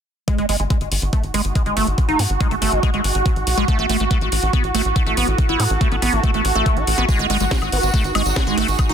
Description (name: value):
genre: psychedelic trance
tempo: 141 BPM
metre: 4/4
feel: straight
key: unclear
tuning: A4 = 439 Hz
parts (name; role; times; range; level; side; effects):
- swarming drone; sustained chords; 1.1-8.9 s; F#4; -24 LUFS; right 4 dB; built-in reverb, sidechain pumping
- liquid acid bass; riff; 0.3-8.9 s; G#3 to E4; -22 LUFS; moving between left 3 dB and right 3 dB; phaser, auto-pan, sidechain pumping, ping-pong delay
- electronic kick drum; drums; 0.3-8.9 s; none; -19 LUFS; equal; none
- techno drum kit; drums; 0.3-8.9 s; hi-hat, snare drum, woodblock; -26 LUFS; left 2 dB; none
- airy breathy pad; texture; 0.9-8.9 s; D#4 to A5; -34 LUFS; right 2 dB; none
- tight sequencer bass; bass; 0.4-8.9 s; G#1 to A2; -22 LUFS; equal; none
- tambourine; percussion; 7.1-8.9 s; none; -30 LUFS; right 6 dB; none
- formant-sweep wobble bass; second line; 7.7-8.8 s; D#3 to B3; -32 LUFS; left 2 dB; ensemble chorus, sidechain pumping, high-pass filter, ping-pong delay
room: little or no reverb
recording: dense, heavily limited modern master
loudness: -16 LUFS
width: side -8 dB against mid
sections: 0.3-8.9 A section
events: none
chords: 0.3 G#5; 3.7 A5; 7.1 G#5